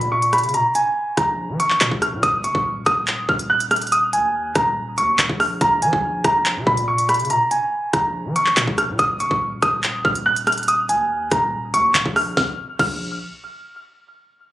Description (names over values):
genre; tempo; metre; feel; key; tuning
hip hop, drill; 142 BPM; 4/4; half-time; Bb phrygian; A4 = 440 Hz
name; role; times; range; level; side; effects
dark concert grand piano; melody; 0.0-13.0 s; Ab5 to Gb6; -18 LUFS; equal; low-pass filter
hard-hitting 808-style bass; bass; 0.0-13.2 s; Eb1 to F3; -28 LUFS; equal; none
drill drum kit; drums; 0.0-12.9 s; crash cymbal, handclaps, hi-hat, kick drum, rim click, snare drum; -22 LUFS; equal; none
room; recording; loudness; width
light reverb; recorded on a phone in the room, club reverb, compression; -17 LUFS; side -15 dB against mid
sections
0.0-12.4 A section; 12.4-14.1 B section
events
none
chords
0.0 Bbm; 2.2 Eb7(no3); 5.6 Bb7(no3); 9.0 Eb7(no3); 12.4 Bb5